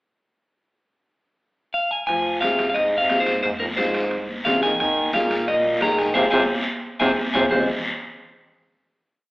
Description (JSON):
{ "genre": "latin, cumbia", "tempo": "177 BPM", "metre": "4/4", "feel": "straight", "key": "F minor", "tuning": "A4 = 438 Hz", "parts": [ { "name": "electric guitar at the edge of break-up", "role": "melody", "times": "1.7-7.7 s", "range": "Bb4 to Bb5", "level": "-21 LUFS", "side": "equal", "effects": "spring reverb" }, { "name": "clear trombone", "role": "second line", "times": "2.1-7.7 s", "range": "F2 to Ab3", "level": "-27 LUFS", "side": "right 1 dB", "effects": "none" }, { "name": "upright bass", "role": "bass", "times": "2.1-7.7 s", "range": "F1 to F2", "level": "-40 LUFS", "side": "equal", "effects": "none" }, { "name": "congas", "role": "percussion", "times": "2.1-7.6 s", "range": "none", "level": "-32 LUFS", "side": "equal", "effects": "none" }, { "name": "guiro", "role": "percussion", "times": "2.1-7.6 s", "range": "none", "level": "-30 LUFS", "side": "equal", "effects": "none" }, { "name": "timbales", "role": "percussion", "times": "2.1-7.6 s", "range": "none", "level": "-32 LUFS", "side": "right 1 dB", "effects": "none" }, { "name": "nylon-string guitar", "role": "accompaniment", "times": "2.4-7.7 s", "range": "Bb3 to Ab4", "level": "-25 LUFS", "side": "left 1 dB", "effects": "none" } ], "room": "wet large studio reverb, RT60 1.2 s", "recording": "band playing live in one room, AM radio sound", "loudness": "-19 LUFS", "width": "side -22 dB against mid", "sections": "0.7-2.1 pickup bar; 2.1-7.5 A section; 7.5-8.9 final chord", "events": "band accent 6.2-7.5; drum fill 6.7-7.5", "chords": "0.7 N.C.; 2.1 Fm; 4.8 Ebsus4; 6.2 Fm", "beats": "| 0.72 1.06 1.40 1.74 | 2.08 2.42 2.76 3.10 | 3.44 3.77 4.11 4.45 | 4.79 5.13 5.47 5.81 | 6.15 6.49 6.83 7.17 | 7.51" }